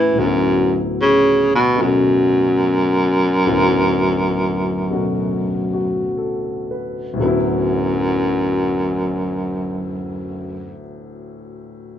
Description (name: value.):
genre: jazz ballad.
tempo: 59-76 BPM.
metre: 4/4.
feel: swing 68% on 8ths.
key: D major.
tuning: A4 = 441 Hz.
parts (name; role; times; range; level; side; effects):
mellow baritone saxophone; melody; 0.0-10.8 s; F#2 to E3; -17 LUFS; equal; none.
warm concert grand piano; accompaniment; 0.0-12.0 s; D2 to B4; -22 LUFS; left 2 dB; none.
room: moderate large studio reverb, RT60 1.2 s.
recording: minimal, uncompressed stereo recording.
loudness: -16 LUFS.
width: side -10 dB against mid.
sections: 0.0-7.2 A section; 7.2-11.2 B section.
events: slowing down 0.2-7.2.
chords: 0.2 D6.